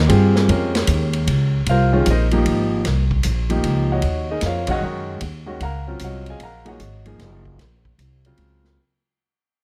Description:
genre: modal jazz.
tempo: 152 BPM.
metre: 3/4.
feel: swing 66% on 8ths.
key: unclear.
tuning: A4 = 439 Hz.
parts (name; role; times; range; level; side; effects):
upright bass; bass; 0.0-8.8 s; Gb1 to G2; -21 LUFS; equal; none.
warm concert grand piano; accompaniment; 0.1-8.8 s; Db3 to Bb5; -25 LUFS; equal; none.
swinging big-band drum kit; drums; 0.1-8.7 s; hi-hat, kick drum, ride cymbal, snare drum; -30 LUFS; equal; none.
room: light reverb.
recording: none.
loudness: -19 LUFS.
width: mono.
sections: 0.0-8.8 A section.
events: fade-out 0.0-8.8.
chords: 0.0 Fm11; 4.0 Ebm11.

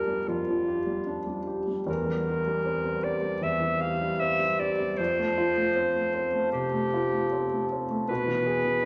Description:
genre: classical, romantic duo for clarinet and grand piano.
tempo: 77 BPM.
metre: 4/4.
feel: rubato.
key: F major.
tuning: A4 = 436 Hz.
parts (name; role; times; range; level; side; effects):
bright clarinet; melody; 0.0-8.9 s; F4 to F5; -30 LUFS; equal; none.
warm grand piano; accompaniment; 0.0-8.9 s; E2 to G#4; -31 LUFS; equal; none.
room: wet recital hall reverb, RT60 1.8 s.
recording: none.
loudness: -27 LUFS.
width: mono.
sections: 0.0-8.9 A section.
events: none.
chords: 0.0 G7(no3)/F; 1.9 C7/E; 5.0 F; 8.1 E/B.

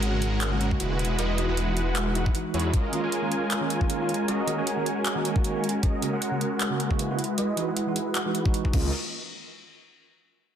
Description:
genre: future bass.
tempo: 155 BPM.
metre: 4/4.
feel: swing 56% on 16ths, half-time.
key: unclear.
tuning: A4 = 440 Hz.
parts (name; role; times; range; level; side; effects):
supersaw chords; riff; 0.0-8.9 s; Ab3 to Ab5; -27 LUFS; right 1 dB; sidechain pumping, low-pass filter, tape echo.
wide detuned saw bass; bass; 0.0-2.7, 8.7-8.9 s; Fb1 to E2; -27 LUFS; equal; chorus, sidechain pumping.
dubstep drum kit; drums; 0.0-8.8 s; crash cymbal, handclaps, hi-hat; -32 LUFS; equal; none.
tine electric piano; accompaniment; 0.1-8.9 s; Db3 to Gb4; -32 LUFS; right 2 dB; medium stereo tremolo, sidechain pumping, tape echo.
electronic kick drum; drums; 0.7-8.8 s; none; -25 LUFS; equal; none.
room: moderate lush hall reverb, RT60 1.7 s.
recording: dense, heavily limited modern master.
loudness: -24 LUFS.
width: side -9 dB against mid.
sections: 0.0-8.9 A section; 8.9-10.5 B section.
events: filter sweep on supersaw synth 0.0-8.9.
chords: 0.0 Ab9sus4; 1.0 Emaj9; 2.7 Db69; 4.3 Gb69; 5.8 Ab9sus4; 7.2 Emaj9; 8.7 Db69; 8.9 N.C..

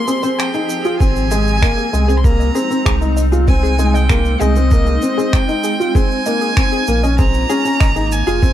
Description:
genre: piano and strings electronica.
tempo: 97 BPM.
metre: 4/4.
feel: straight.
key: Ab major.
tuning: A4 = 440 Hz.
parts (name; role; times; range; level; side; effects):
clear violin; melody; 0.0-8.5 s; Eb5 to C6; -22 LUFS; right 2 dB; none.
granular cloud pad; sustained chords; 0.0-8.5 s; F3 to Ab4; -24 LUFS; left 1 dB; built-in reverb.
analog pluck; arpeggios; 0.1-8.4 s; Ab4 to Ab5; -26 LUFS; left 2 dB; chorus, phaser, sidechain pumping, ping-pong delay.
felt-muted upright piano; riff; 0.1-8.5 s; Ab3 to F4; -19 LUFS; left 1 dB; none.
shaker and finger snaps; drums; 0.1-8.5 s; none; -26 LUFS; right 2 dB; none.
warm sub bass; bass; 1.0-8.5 s; F1 to C2; -16 LUFS; equal; tube saturation, sidechain pumping.
electronic kick drum; drums; 1.0-8.5 s; none; -14 LUFS; equal; none.
room: small room ambience.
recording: dark, warm production.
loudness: -13 LUFS.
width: side -11 dB against mid.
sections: 0.0-8.5 A section.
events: break 0.0-1.0.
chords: 0.0 Fmadd9; 1.0 Ab; 6.0 Bbm.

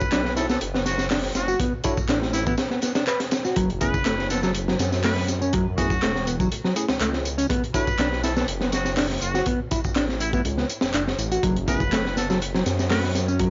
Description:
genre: breakbeat, breaks.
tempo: 122 BPM.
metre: 4/4.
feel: straight.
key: unclear.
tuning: A4 = 439 Hz.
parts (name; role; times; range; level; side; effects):
trumpet with straight mute; melody; 0.0-13.1 s; E4 to B4; -33 LUFS; equal; AM radio sound, vintage 12-bit sampler grit, tape echo.
crunchy breakbeat drum kit; drums; 0.0-13.5 s; hi-hat, kick drum, snare drum; -28 LUFS; equal; none.
electronic tambourine and handclaps; drums; 0.0-13.5 s; none; -35 LUFS; equal; none.
mellow electric guitar; riff; 0.1-13.5 s; F#3 to B4; -29 LUFS; equal; none.
dark detuned saw bass; bass; 0.1-13.5 s; E1 to F#2; -30 LUFS; equal; none.
bell-like tine electric piano; stabs; 1.8-7.9, 11.7-11.8 s; A3 to C#5; -34 LUFS; equal; vintage 12-bit sampler grit, tape echo.
room: small room ambience.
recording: dry, gritty hardware recording, vinyl crackle, nothing above 7.5 kHz.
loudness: -24 LUFS.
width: mono.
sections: 0.0-13.5 A section.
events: kick drops out 2.6-3.6.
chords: 0.0 Bm7; 3.6 F#m7; 7.5 B7(no3); 11.4 F#m.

